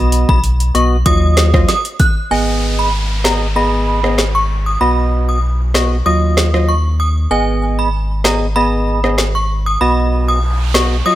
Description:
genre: dancehall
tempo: 96 BPM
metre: 4/4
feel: straight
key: G# dorian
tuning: A4 = 437 Hz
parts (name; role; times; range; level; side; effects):
- synth chime; melody; 0.0-11.2 s; G#5 to F#6; -19 LUFS; equal; ensemble chorus, phaser, tremolo, digital delay
- percussive organ stab; accompaniment; 0.0-11.2 s; F#3 to D#5; -19 LUFS; right 1 dB; chorus
- sub bass with octave; bass; 0.0-11.0 s; G#1 to D#2; -15 LUFS; equal; none
- afro-pop drum kit; drums; 0.1-10.9 s; hi-hat, kick drum, rim click, snare drum; -16 LUFS; equal; overdrive
- downlifter and noise sweep; sound effects; 2.3-11.2 s; none; -27 LUFS; right 1 dB; none
room: little or no reverb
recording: none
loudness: -12 LUFS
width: side -14 dB against mid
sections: 0.0-2.3 A section; 2.3-11.2 B section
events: noise sweep 10.1-11.2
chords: 0.0 B; 1.1 D#madd9; 2.3 G#m; 4.8 B; 6.1 D#madd9; 7.3 G#m; 9.8 B

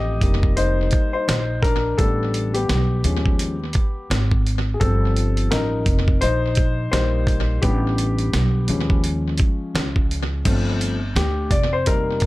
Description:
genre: hip hop, jazz-hop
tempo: 85 BPM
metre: 4/4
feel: swing 60% on 16ths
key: unclear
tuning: A4 = 440 Hz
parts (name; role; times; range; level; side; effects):
- dark grand piano; accompaniment; 0.0-12.3 s; F3 to Eb5; -24 LUFS; left 3 dB; none
- upright bass; bass; 0.0-12.2 s; F1 to Eb2; -21 LUFS; equal; none
- dusty soul sampler-style drum kit; drums; 0.2-12.3 s; crash cymbal, hi-hat, kick drum, snare drum; -21 LUFS; equal; tape echo
room: little or no reverb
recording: echo-heavy mix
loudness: -18 LUFS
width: side -18 dB against mid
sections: 0.0-10.5 A section; 10.5-12.3 B section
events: grand piano solo 0.0-10.5, 10.5-12.3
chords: 0.2 F9sus4; 2.0 A9sus4; 3.0 Eb9sus4; 4.8 G9sus4; 5.9 F9sus4; 7.6 A9sus4; 8.7 Eb9sus4; 10.5 G9sus4; 11.5 F9sus4

